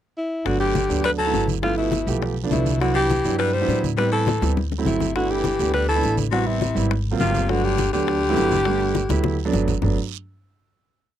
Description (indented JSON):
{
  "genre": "Afro-Cuban jazz",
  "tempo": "205 BPM",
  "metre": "4/4",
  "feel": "straight",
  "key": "G major",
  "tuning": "A4 = 437 Hz",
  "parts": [
    { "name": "warm alto saxophone", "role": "melody", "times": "0.2-9.5 s", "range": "E4 to C5", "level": "-23 LUFS", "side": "equal", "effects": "none" },
    { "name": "warm concert grand piano", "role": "accompaniment", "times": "0.4-10.0 s", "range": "F3 to G4", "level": "-25 LUFS", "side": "right 6 dB", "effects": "none" },
    { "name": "growling baritone saxophone", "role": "second line", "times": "0.5-9.5 s", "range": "B2 to G3", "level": "-28 LUFS", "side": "left 15 dB", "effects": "none" },
    { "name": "upright bass", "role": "bass", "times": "0.5-10.0 s", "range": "G1 to A2", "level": "-25 LUFS", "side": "equal", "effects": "none" },
    { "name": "bongos", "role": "percussion", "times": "0.5-9.9 s", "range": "none", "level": "-29 LUFS", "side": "left 12 dB", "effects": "none" },
    { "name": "congas", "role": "percussion", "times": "0.5-9.9 s", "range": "none", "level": "-29 LUFS", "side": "left 2 dB", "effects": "none" },
    { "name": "guiro", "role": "percussion", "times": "0.5-9.9 s", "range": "none", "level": "-37 LUFS", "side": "right 25 dB", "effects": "none" }
  ],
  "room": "little or no reverb",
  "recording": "dry, close 1970s-style studio recording",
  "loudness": "-19 LUFS",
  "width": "side -11 dB against mid",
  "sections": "0.0-0.5 pickup bar; 0.5-9.8 A section; 9.8-11.0 final chord",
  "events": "drum fill 4.3-5.2, 9.1-9.8",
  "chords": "0.5 Gmaj7; 1.6 G13; 2.8 Cmaj9#11; 4.0 Am9; 4.6 D9; 5.2 G69; 6.3 Am9; 6.9 Ab13; 7.5 Gmaj7",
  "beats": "0.16 | 0.45 0.75 1.04 1.34 | 1.63 1.93 2.22 2.51 | 2.81 3.10 3.39 3.69 | 3.98 4.27 4.57 4.86 | 5.15 5.45 5.74 6.03 | 6.32 6.62 6.91 7.20 | 7.49 7.78 8.07 8.37 | 8.66 8.95 9.24 9.53 | 9.82"
}